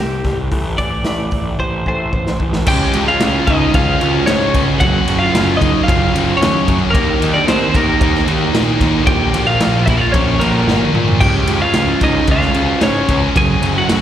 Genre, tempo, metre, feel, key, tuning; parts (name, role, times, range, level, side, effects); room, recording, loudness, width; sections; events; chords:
quiet-loud alternative rock; 112 BPM; 4/4; straight; A4 = 440 Hz
twelve-string electric guitar; melody; 0.0-14.0 s; Bb3 to Ab5; -18 LUFS; left 1 dB; slapback echo
direct-recorded clean electric guitar; arpeggios; 0.0-2.7 s; A2 to A3; -29 LUFS; left 2 dB; phaser, slapback echo, analog delay
fuzz picked electric bass; bass; 0.0-14.0 s; Gb1 to Bb2; -19 LUFS; left 1 dB; overdrive
raw garage drum kit; drums; 0.2-14.0 s; crash cymbal, hi-hat, kick drum, ride cymbal, snare drum, toms; -18 LUFS; equal
crunchy overdriven guitar; riff; 2.7-14.0 s; Gb2 to Eb4; -20 LUFS; right 11 dB
tight distorted guitar; riff; 2.7-14.0 s; Gb2 to Eb4; -22 LUFS; left 13 dB; distortion
tight distorted guitar; riff; 2.7-14.0 s; Gb2 to Eb4; -25 LUFS; left 2 dB
little or no reverb; live gig heard through the venue's PA, recital hall reverb; -12 LUFS; side -10 dB against mid
0.0-2.7 A section; 2.7-14.0 B section
drum fill 1.6-2.7, 10.7-11.2
0.0 C5; 0.5 Am; 2.7 Db; 4.8 Gb; 6.9 Eb; 9.1 Bbm; 11.2 Db; 13.4 Gb